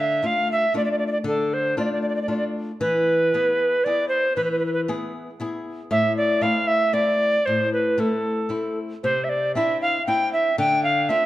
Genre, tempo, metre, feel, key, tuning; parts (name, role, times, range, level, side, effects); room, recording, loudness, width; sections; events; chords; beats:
italian folk, Italian serenade; 116 BPM; 3/4; rubato; A harmonic minor; A4 = 441 Hz
mellow alto recorder; melody; 0.0-11.3 s; A4 to G5; -20 LUFS; right 1 dB
flamenco guitar; accompaniment; 0.0-11.3 s; A2 to G#4; -27 LUFS; left 2 dB
moderate recital hall reverb, RT60 1.4 s; dark, warm production; -20 LUFS; side -15 dB against mid
0.0-9.0 A section; 9.0-11.3 B section
0.0 Dm; 2.8 E; 5.9 Am; 9.0 Cadd9; 10.6 Dm7
0.22 0.73 | 1.25 1.76 2.28 | 2.81 3.33 3.85 | 4.37 4.89 5.40 | 5.91 6.42 6.93 | 7.46 7.97 8.50 | 9.03 9.55 10.07 | 10.59 11.10